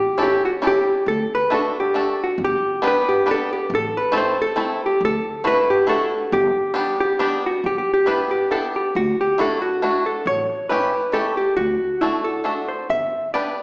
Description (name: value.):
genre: musette waltz.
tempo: 137 BPM.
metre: 3/4.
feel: swing 54% on 8ths.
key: G major.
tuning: A4 = 440 Hz.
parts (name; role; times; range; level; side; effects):
hollow-body jazz guitar; melody; 0.0-13.6 s; E4 to E5; -19 LUFS; equal; none.
bluegrass banjo; accompaniment; 0.2-13.6 s; G3 to B4; -23 LUFS; equal; none.
upright bass; bass; 1.1-13.1 s; G1 to D2; -30 LUFS; equal; none.
room: wet recital hall reverb, RT60 1.5 s.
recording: recorded in a church or concert hall, small speaker sound.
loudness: -17 LUFS.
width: side -27 dB against mid.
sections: 0.0-7.6 A section; 7.6-13.6 A section.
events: none.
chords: 0.0 A7; 1.1 D; 2.4 G; 3.7 Am; 5.0 Dadd9; 6.3 G; 7.6 G6; 8.9 Dadd9; 10.3 A7; 11.6 D; 12.9 G.